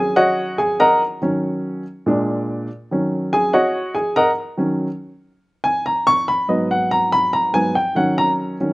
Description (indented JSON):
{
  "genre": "jazz",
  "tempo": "142 BPM",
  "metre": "4/4",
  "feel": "straight",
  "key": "Eb minor",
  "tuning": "A4 = 440 Hz",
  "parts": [
    { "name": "warm baby grand piano", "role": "solo", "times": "0.0-8.7 s", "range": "Ab2 to Db6", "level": "-16 LUFS", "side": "equal", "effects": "none" }
  ],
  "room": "little or no reverb",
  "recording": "recorded outdoors, with no room sound, nothing above 11.0 kHz",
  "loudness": "-16 LUFS",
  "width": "side -21 dB against mid",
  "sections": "0.0-2.9 A section; 2.9-8.7 A section",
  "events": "grand piano solo 0.0-8.7",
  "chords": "0.0 Ebm7; 2.1 Bb7; 2.9 Ebm7; 6.3 Abm7; 8.0 Ebm7",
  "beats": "0.38 0.80 | 1.23 1.65 2.07 2.49 | 2.91 3.33 3.75 4.17 | 4.59 5.01 5.43 5.86 | 6.28 6.70 7.12 7.54 | 7.96 8.38"
}